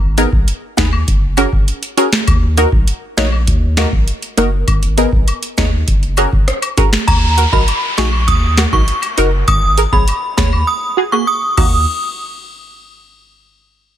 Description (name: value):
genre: dancehall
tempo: 100 BPM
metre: 4/4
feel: straight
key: Eb minor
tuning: A4 = 441 Hz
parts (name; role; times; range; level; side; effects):
- warm sub bass; bass; 0.0-11.9 s; Gb1 to Eb2; -16 LUFS; equal; none
- punchy chord stab; accompaniment; 0.2-11.9 s; Bb3 to Db5; -18 LUFS; right 1 dB; chorus, phaser
- booming analog drum machine; drums; 0.2-11.8 s; crash cymbal, finger snaps, hi-hat, kick drum, rim click, snare drum; -15 LUFS; equal; none
- cabasa and woodblock; percussion; 0.2-11.9 s; none; -26 LUFS; left 7 dB; none
- synth chime; melody; 7.1-11.9 s; Bb5 to Eb6; -17 LUFS; right 1 dB; ensemble chorus, ping-pong delay
- downlifter; sound effects; 7.1-11.9 s; none; -24 LUFS; equal; none
room: digital ambience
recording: dense, heavily limited modern master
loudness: -12 LUFS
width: side -11 dB against mid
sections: 0.0-7.1 A section; 7.1-11.9 B section; 11.9-14.0 C section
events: silent gap 10.7-11.9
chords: 0.0 Abm; 1.1 Gbadd9; 2.3 Ebm; 4.7 Abm; 5.9 Gbadd9; 7.1 Ebm; 9.5 Abm; 10.7 Gbadd9; 11.6 Ebm; 11.9 N.C.